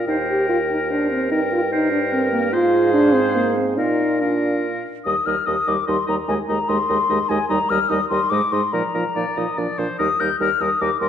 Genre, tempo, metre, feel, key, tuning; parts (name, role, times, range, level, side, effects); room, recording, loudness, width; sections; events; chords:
quick classical-period movement for wind quintet; 147 BPM; 3/4; straight; Eb major; A4 = 440 Hz
mellow silver concert flute; melody; 0.0-11.1 s; F5 to G6; -23 LUFS; left 5 dB
clear oboe; second line; 0.0-11.1 s; Bb4 to Eb5; -27 LUFS; left 3 dB
mellow French horn; accompaniment; 0.0-11.1 s; F3 to G4; -22 LUFS; equal
mellow bassoon; bass; 0.0-11.1 s; Eb2 to Bb2; -24 LUFS; right 2 dB
clear clarinet; accompaniment; 0.1-11.1 s; D4 to C5; -28 LUFS; right 7 dB
wet scoring stage reverb, RT60 1.7 s; dark, warm production; -17 LUFS; side -9 dB against mid
0.0-5.1 A section; 5.1-11.1 A section
0.1 Eb; 1.3 Gmadd11; 2.5 Fm/Ab; 3.8 Bb; 5.1 Eb; 6.3 Ab/Eb; 7.5 Eb; 8.3 Ab; 8.7 Bbsus4; 9.6 Bb; 10.0 Eb